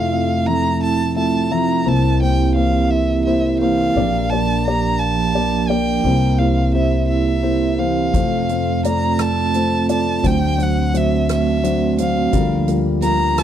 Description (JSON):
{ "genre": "acoustic folk-pop ballad", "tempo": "57 BPM (dotted quarters)", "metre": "6/8", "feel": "straight", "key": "F major", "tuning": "A4 = 440 Hz", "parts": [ { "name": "rich violin", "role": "melody", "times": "0.0-13.4 s", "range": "E5 to Bb5", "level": "-22 LUFS", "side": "right 2 dB", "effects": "none" }, { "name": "dark grand piano", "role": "accompaniment", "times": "0.0-13.4 s", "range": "F1 to E5", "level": "-21 LUFS", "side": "left 6 dB", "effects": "none" }, { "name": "vibraphone with medium mallets", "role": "arpeggios", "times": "0.0-13.4 s", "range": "F3 to G4", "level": "-21 LUFS", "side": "right 8 dB", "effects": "none" }, { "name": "upright bass", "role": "bass", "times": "0.0-13.4 s", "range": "Bb1 to F2", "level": "-22 LUFS", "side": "equal", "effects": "none" }, { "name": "soft-mallet drum kit", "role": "drums", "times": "8.1-13.4 s", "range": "hi-hat, kick drum, rim click", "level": "-25 LUFS", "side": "equal", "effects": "none" } ], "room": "small room reverb", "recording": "dry, close 1970s-style studio recording", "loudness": "-15 LUFS", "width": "side -10 dB against mid", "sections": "0.0-13.4 A section", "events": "none", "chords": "0.0 Fmaj7; 1.9 C7; 3.9 Bb6; 6.0 C7; 8.1 F; 10.2 D7; 12.3 Gm7/D", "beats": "0.81 | 1.86 2.90 | 3.95 5.00 | 6.04 7.09 | 8.14 9.19 | 10.24 11.29 | 12.33 13.38" }